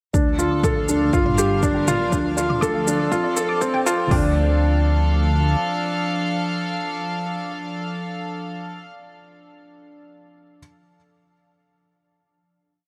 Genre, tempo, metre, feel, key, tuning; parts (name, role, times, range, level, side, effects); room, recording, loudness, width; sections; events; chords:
piano and strings electronica; 121 BPM; 4/4; straight; D minor; A4 = 440 Hz
warm studio string section; sustained chords; 0.1-8.8 s; F3 to F5; -29 LUFS; equal; sidechain pumping
soft round pluck; arpeggios; 0.1-4.3 s; A4 to D6; -34 LUFS; equal; ensemble chorus, sidechain pumping, digital delay
felt-muted upright piano; riff; 0.1-10.6 s; C4 to A4; -25 LUFS; equal; digital delay
dark detuned saw bass; bass; 0.1-5.6 s; G1 to F2; -24 LUFS; equal; sidechain pumping
deep house drum kit; drums; 0.1-4.2 s; hi-hat, kick drum, toms; -25 LUFS; equal
electronic shaker and toms; drums; 0.1-4.0 s; -30 LUFS; equal
moderate huge ambient reverb, RT60 6.5 s; high-pass filter; -21 LUFS; mono
0.1-4.1 build; 4.1-8.1 final chord
build-up 0.1-4.1; filter sweep on synth arpeggio sound 0.1-4.1; filter sweep 0.1-4.1
0.1 Dm; 1.1 Gm7; 2.1 Dm; 3.1 F; 4.1 Dm